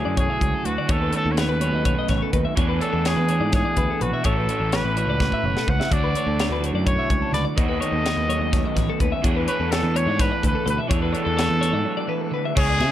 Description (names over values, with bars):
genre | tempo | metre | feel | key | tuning
math rock and midwest emo | 252 BPM (eighths) | 7/8 | straight | unclear | A4 = 440 Hz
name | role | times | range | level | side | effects
clear trumpet | melody | 0.0-12.9 s | F#4 to F#5 | -26 LUFS | equal | none
twelve-string electric guitar | accompaniment | 0.0-12.9 s | A2 to B4 | -29 LUFS | right 6 dB | vibrato effect
twelve-string electric guitar | arpeggios | 0.0-12.9 s | A4 to E5 | -29 LUFS | left 6 dB | none
crunchy overdriven guitar | riff | 0.0-12.9 s | A2 to G#4 | -29 LUFS | right 1 dB | none
picked electric bass | bass | 0.0-12.9 s | F#1 to C#3 | -25 LUFS | equal | none
crisp fusion drum kit | drums | 0.2-12.9 s | crash cymbal, hi-hat, kick drum, ride cymbal, snare drum | -24 LUFS | equal | none
room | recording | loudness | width
light reverb | dark, warm production | -19 LUFS | side -12 dB against mid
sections
0.0-12.6 A section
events
drum fill 5.2-5.9; break 11.9-12.6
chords
0.0 Dmaj9; 0.9 B9/D#; 2.6 E7sus4; 4.2 A6; 5.9 Dmaj9; 7.6 B9/D#; 9.2 E7sus4